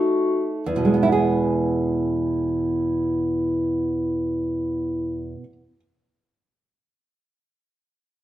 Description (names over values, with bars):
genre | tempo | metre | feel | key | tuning
romantic duo for clarinet and classical guitar | 51 BPM | 4/4 | rubato | E major | A4 = 440 Hz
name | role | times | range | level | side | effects
dark clarinet | melody | 0.0-5.4 s | E4 to F#4 | -23 LUFS | left 1 dB | none
nylon-string guitar | accompaniment | 0.0-5.8 s | E2 to G#4 | -23 LUFS | right 3 dB | none
room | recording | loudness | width
moderate stone room reverb, RT60 1.2 s | band playing live in one room | -20 LUFS | side -13 dB against mid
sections
0.7-5.4 A section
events
none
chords
0.0 B7 (rootless); 0.7 E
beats
| 0.67 1.85 3.03 4.22